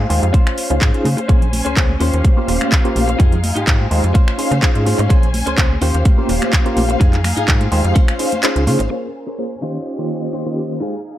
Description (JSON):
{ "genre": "filtered disco house", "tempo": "126 BPM", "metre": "4/4", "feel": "swing 54% on 16ths", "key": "unclear", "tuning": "A4 = 441 Hz", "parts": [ { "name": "reed electric piano", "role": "accompaniment", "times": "0.0-11.0 s", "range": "Eb3 to C5", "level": "-21 LUFS", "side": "right 1 dB", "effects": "fast tremolo, phaser, sidechain pumping, low-pass filter" }, { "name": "dark symphonic string section", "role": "sustained chords", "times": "0.0-11.2 s", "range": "Ab3 to Ab5", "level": "-25 LUFS", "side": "left 3 dB", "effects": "sidechain pumping, low-pass filter" }, { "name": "direct-recorded clean electric guitar", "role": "riff", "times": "0.0-11.0 s", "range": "Db4 to C5", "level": "-25 LUFS", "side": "equal", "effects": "wide subtle chorus, sidechain pumping, low-pass filter" }, { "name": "slap-like FM bass", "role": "bass", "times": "0.0-8.9 s", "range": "Eb1 to Db3", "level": "-18 LUFS", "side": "equal", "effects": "sidechain pumping, low-pass filter" }, { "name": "house drum kit", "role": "drums", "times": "0.1-8.9 s", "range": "finger snaps, handclaps, hi-hat", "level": "-22 LUFS", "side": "right 1 dB", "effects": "sidechain pumping on hats" }, { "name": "tambourine and congas", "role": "percussion", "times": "0.1-8.9 s", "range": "none", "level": "-27 LUFS", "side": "equal", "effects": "sidechain pumping on perc, low-pass filter on perc" }, { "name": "electronic kick drum", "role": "drums", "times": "0.3-8.1 s", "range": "none", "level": "-13 LUFS", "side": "equal", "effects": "none" } ], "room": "little or no reverb", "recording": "none", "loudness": "-13 LUFS", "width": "side -13 dB against mid", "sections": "0.0-8.9 A section; 8.9-11.2 B section", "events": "kick drops out 8.4-8.9; filter sweep 8.9-11.2", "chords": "0.3 Dbmaj7; 1.3 Bbm9; 2.0 Eb13; 3.2 Fm7; 4.1 Dbmaj7; 5.1 Bbm9; 5.8 Eb13; 7.0 Fm7; 8.0 Dbmaj7; 8.9 Bbm9; 9.6 Eb13" }